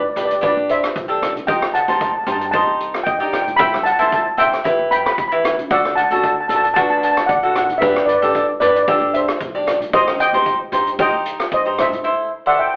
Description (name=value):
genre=calypso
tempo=114 BPM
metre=4/4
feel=swing 54% on 16ths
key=G major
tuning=A4 = 440 Hz
part: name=steel pan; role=melody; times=0.0-12.8 s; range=B4 to B5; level=-19 LUFS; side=equal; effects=none
part: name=upright bass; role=bass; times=0.0-11.9 s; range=G1 to G2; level=-39 LUFS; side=equal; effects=none
part: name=cavaquinho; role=accompaniment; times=0.2-12.7 s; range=D4 to D5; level=-22 LUFS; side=equal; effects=none
part: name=street-band drum kit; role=drums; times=0.2-12.0 s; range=hi-hat, kick drum, rim click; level=-28 LUFS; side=equal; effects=none
part: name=congas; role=percussion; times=0.2-12.0 s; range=none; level=-36 LUFS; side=equal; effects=none
room=wet studio reverb, RT60 0.6 s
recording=heard from further back in the room, telephone sound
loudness=-17 LUFS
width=mono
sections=0.0-12.8 A section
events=none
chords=0.0 G; 1.5 Cm; 3.6 Am7/C; 4.6 Em; 5.7 D; 7.8 G; 9.9 Cm; 12.0 Am